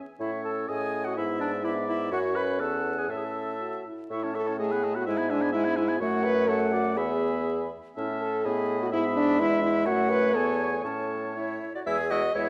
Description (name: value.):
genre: quick classical-period movement for wind quintet.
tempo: 117-130 BPM.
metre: 2/4.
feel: rubato.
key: A major.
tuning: A4 = 440 Hz.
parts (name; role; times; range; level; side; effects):
warm French horn; accompaniment; 0.0-12.5 s; G#3 to B4; -31 LUFS; equal; none.
concert flute; melody; 0.2-12.5 s; E4 to C#6; -37 LUFS; equal; none.
warm oboe; second line; 0.2-12.4 s; E4 to G#5; -37 LUFS; equal; none.
warm clarinet; accompaniment; 0.2-12.5 s; G#3 to E5; -35 LUFS; equal; none.
mellow bassoon; bass; 0.2-12.5 s; E2 to A2; -34 LUFS; equal; none.
room: wet recital hall reverb, RT60 1.6 s.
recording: vinyl crackle.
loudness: -27 LUFS.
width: mono.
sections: 0.0-4.1 A section; 4.1-11.9 B section.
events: none.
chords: 0.2 A; 0.7 Amaj7#11; 1.2 E/G#; 2.1 F#5; 2.6 F#m9/E; 3.1 A; 4.6 B7/A; 5.1 E/G#; 6.0 F#m; 7.0 E; 8.0 A; 8.5 B7/A; 8.9 E/G#; 9.9 F#m; 10.3 E; 10.8 A; 11.9 E.